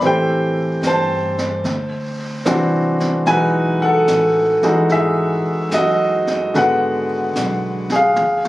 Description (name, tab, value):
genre	jazz ballad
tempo	74 BPM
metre	4/4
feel	swing 67% on 8ths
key	unclear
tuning	A4 = 441 Hz
part	clear baby grand piano	accompaniment	0.0-8.5 s	D3 to A5	-15 LUFS	equal	none
part	upright bass	bass	0.0-8.5 s	F#1 to A2	-27 LUFS	right 1 dB	none
part	jazz brush drum kit	drums	0.0-8.5 s	brushed snare drum, hi-hat, snare drum, toms	-28 LUFS	right 1 dB	none
room	light reverb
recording	recorded on a phone in the room, club reverb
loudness	-15 LUFS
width	side -16 dB against mid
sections	0.0-8.5 A section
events	drum fill 8.2-8.5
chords	0.0 Am7; 1.6 D9; 3.3 Emaj9; 6.5 G#m7b5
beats	| 0.02 0.83 1.65 2.45 | 3.26 4.07 4.88 5.70 | 6.53 7.34 8.17